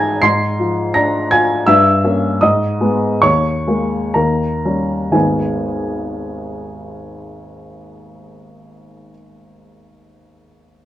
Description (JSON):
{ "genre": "classical, romantic character piece for solo piano", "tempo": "57-86 BPM", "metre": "2/4", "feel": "rubato", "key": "G# minor", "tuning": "A4 = 440 Hz", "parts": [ { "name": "warm upright piano", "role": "solo", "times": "0.0-10.9 s", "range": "G#1 to B#6", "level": "-14 LUFS", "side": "equal", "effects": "none" } ], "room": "moderate large studio reverb, RT60 1.1 s", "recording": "worn, warbling old tape, cassette tape, warbly pitch drift", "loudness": "-13 LUFS", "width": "side -13 dB against mid", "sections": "0.0-5.1 A section; 5.1-8.8 B section", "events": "slowing down 0.9-5.1", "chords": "0.2 A#7/G#; 1.7 Gdim7; 2.4 G#m; 3.2 D#7sus4; 4.1 D#7; 5.1 G#m" }